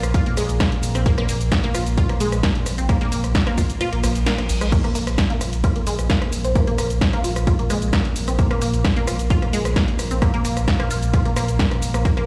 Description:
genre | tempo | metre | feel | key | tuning
driving peak-time techno | 131 BPM | 4/4 | straight | unclear | A4 = 442 Hz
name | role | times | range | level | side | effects
warm sub bass | bass | 0.0-12.3 s | Bb1 | -26 LUFS | equal | sidechain pumping, low-pass filter
deep dark ambient pad | drone | 0.0-12.3 s | Bb2 to Bb3 | -31 LUFS | equal | chorus, built-in reverb, sidechain pumping
punchy analog drum machine | drums | 0.0-12.3 s | crash cymbal, hi-hat, ride cymbal, rim click, shaker, snare drum | -29 LUFS | equal | none
resonant blip pluck | riff | 0.1-12.2 s | Ab3 to Bb4 | -29 LUFS | equal | phaser, sidechain pumping, tape echo
electronic kick drum | drums | 0.1-12.1 s | none | -22 LUFS | equal | none
reverse cymbal | sound effects | 4.0-4.7 s | none | -38 LUFS | equal | none
room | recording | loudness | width
light reverb | played on a big sound system in a bare room, large studio reverb | -20 LUFS | mono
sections
0.0-12.3 A section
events
kick drops out 3.8-4.7; reverse cymbal 4.0-4.7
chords
0.0 Bb5

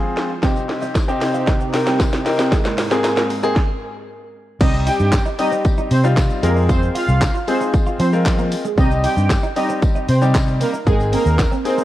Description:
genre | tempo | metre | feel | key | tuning
dance-pop | 115 BPM | 4/4 | straight | C minor | A4 = 440 Hz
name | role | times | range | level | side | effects
clear grand piano | accompaniment | 0.0-11.8 s | G3 to Bb4 | -22 LUFS | left 2 dB | sidechain pumping, low-pass filter
soft round pluck | arpeggios | 0.0-3.5 s | C3 to G5 | -30 LUFS | right 4 dB | chorus, sidechain pumping, low-pass filter, tape echo
house drum kit | drums | 0.2-11.8 s | crash cymbal, handclaps, hi-hat, kick drum, shaker, snare drum | -19 LUFS | equal | none
sweeping resonant pad | sustained chords | 0.4-3.6 s | Ab2 to Bb4 | -27 LUFS | right 1 dB | chorus, sidechain pumping, low-pass filter
twelve-string electric guitar | riff | 0.4-11.8 s | Ab3 to F4 | -27 LUFS | right 3 dB | wide subtle chorus, low-pass filter
tambourine | percussion | 0.4-11.8 s | none | -40 LUFS | left 6 dB | none
soft supersaw | melody | 4.6-11.7 s | Ab3 to G5 | -22 LUFS | right 1 dB | sidechain pumping, tape echo
vintage muted fingered electric bass | bass | 4.6-11.4 s | Ab1 to F3 | -17 LUFS | equal | sidechain pumping
room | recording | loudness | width
light reverb | worn, warbling old tape, cassette tape, warbly pitch drift | -15 LUFS | side -14 dB against mid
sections
0.0-4.6 A section; 4.6-11.8 B section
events
build-up 0.0-4.6; drum fill 0.0-3.6; filter sweep 0.0-4.6; stop 3.6-4.6; drop 4.6-11.8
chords
0.4 Cm; 2.5 Abadd9; 4.6 Cm; 6.4 Fm; 8.8 Cm; 10.9 Abadd9

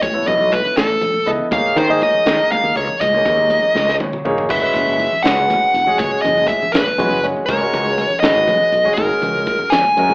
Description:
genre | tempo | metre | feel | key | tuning
electric jazz fusion | 80 BPM (dotted quarters) | 6/8 | straight | unclear | A4 = 440 Hz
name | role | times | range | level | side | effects
dark smooth lead guitar | melody | 0.0-10.1 s | A4 to Ab5 | -15 LUFS | equal | overdrive
fretless electric bass | bass | 0.0-10.1 s | Fb1 to Eb3 | -23 LUFS | equal | none
crisp fusion drum kit | drums | 0.0-10.1 s | crash cymbal, hi-hat, kick drum, snare drum, toms | -22 LUFS | equal | none
congas | percussion | 0.0-10.1 s | none | -27 LUFS | equal | none
warm concert grand piano | accompaniment | 0.1-10.1 s | Ab3 to F5 | -21 LUFS | equal | none
room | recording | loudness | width
moderate large studio reverb, RT60 0.8 s | band playing live in one room, AM radio sound | -13 LUFS | side -39 dB against mid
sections
0.0-4.5 A section; 4.5-10.1 B section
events
drum fill 3.8-4.5, 10.0; grand piano fill 3.8-4.5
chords
0.0 B9sus4; 1.5 Eb7sus4; 4.5 Gb9sus4; 7.5 Db13sus4

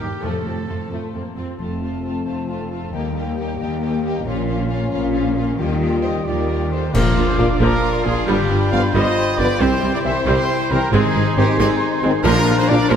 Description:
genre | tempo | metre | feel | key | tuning
cinematic, heroic adventure film score | 90 BPM (dotted quarters) | 6/8 | straight | F mixolydian, Bb mixolydian from 6.9 s | A4 = 441 Hz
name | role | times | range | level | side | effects
warm symphonic violin section | melody | 0.0-13.0 s | A3 to D5 | -30 LUFS | left 4 dB | none
warm oboe | second line | 0.0-0.9, 7.0-13.0 s | G4 to Ab5 | -29 LUFS | right 4 dB | none
warm symphonic violin section | second line | 0.0-13.0 s | C4 to A4 | -31 LUFS | left 2 dB | none
clear symphonic viola section | accompaniment | 0.0-13.0 s | F3 to C4 | -26 LUFS | equal | none
concert harp | arpeggios | 0.0-13.0 s | G2 to C6 | -27 LUFS | left 7 dB | none
rich symphonic double bass section | bass | 0.0-13.0 s | F1 to F2 | -25 LUFS | right 3 dB | none
warm symphonic cello section | bass | 0.0-13.0 s | Eb2 to Eb3 | -26 LUFS | right 2 dB | none
timpani | percussion | 0.2-2.2, 6.9-7.6, 12.3-12.9 s | F2 to Bb2 | -26 LUFS | left 2 dB | none
bright concert flute | second line | 1.6-13.0 s | F5 to D6 | -30 LUFS | left 1 dB | none
dark clarinet | second line | 1.6-13.0 s | Bb3 to F4 | -27 LUFS | left 1 dB | none
mellow French horn section | sustained chords | 1.6-12.8 s | Eb3 to F4 | -25 LUFS | left 3 dB | none
cymbal swell, clash cymbals and concert bass drum | percussion | 4.3-7.8 s | none | -26 LUFS | equal | none
clear trumpet section | stabs | 6.0-13.0 s | G4 to F5 | -23 LUFS | right 2 dB | none
warm tuba | bass | 6.9-13.0 s | G1 to C2 | -26 LUFS | right 3 dB | none
room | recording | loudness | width
wet scoring stage reverb, RT60 2.0 s | none | -16 LUFS | side -8 dB against mid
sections
0.0-1.6 A section; 1.6-6.9 B section; 6.9-13.0 C section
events
band accent 6.9-7.4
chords
0.2 F; 2.9 Eb; 4.3 Bbm; 5.6 Ebadd9; 6.9 Bb; 8.3 G7; 9.6 C; 10.9 Ab; 12.2 Bb

